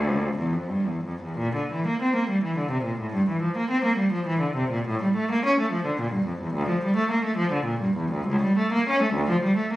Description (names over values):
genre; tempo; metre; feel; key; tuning
classical, baroque-style suite movement for unaccompanied cello; 70 BPM (dotted quarters); 6/8; uneven beats, rubato; D minor; A4 = 440 Hz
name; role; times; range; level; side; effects
rich cello; solo; 0.0-9.8 s; C#2 to C#4; -22 LUFS; equal; none
room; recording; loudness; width
moderate studio reverb, RT60 0.6 s; recorded on a phone in the room, studio reverb, compression; -22 LUFS; side -16 dB against mid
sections
0.0-1.4 A section; 1.4-9.8 A section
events
none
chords
none